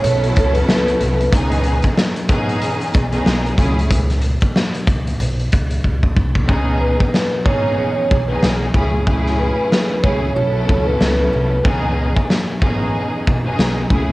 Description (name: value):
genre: hip hop, boom-bap hip-hop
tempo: 93 BPM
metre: 4/4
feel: swing 58% on 16ths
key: C# minor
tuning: A4 = 439 Hz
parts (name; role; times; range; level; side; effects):
- vibraphone with soft mallets; melody; 0.0-1.3, 6.8-11.6 s; B4 to C#5; -21 LUFS; right 1 dB; high-pass filter, low-pass filter, cassette tape, analog delay
- warm studio string section; accompaniment; 0.0-14.1 s; C#3 to A4; -21 LUFS; equal; cassette tape, high-pass filter, low-pass filter
- upright bass; bass; 0.0-14.1 s; G#1 to C#2; -20 LUFS; equal; none
- raw garage drum kit; drums; 0.0-14.1 s; hi-hat, kick drum, snare drum; -18 LUFS; equal; vintage 12-bit sampler grit
room: small room ambience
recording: home recording on cassette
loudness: -14 LUFS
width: side -19 dB against mid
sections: 0.0-6.5 A section; 6.5-14.1 B section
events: drum fill 5.8-6.5; hi-hats muted 6.5-14.1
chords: 0.0 B9sus4; 1.3 C#m7; 3.6 F#m7/C#; 5.2 Bsus2; 6.5 C#m7; 8.7 F#m7/C#; 10.4 B9sus4; 11.6 C#m7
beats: 0.04 0.68 | 1.32 1.97 2.62 3.26 | 3.91 4.55 5.20 5.84 | 6.49 7.13 7.78 8.42 | 9.07 9.71 10.36 11.00 | 11.65 12.29 12.94 13.58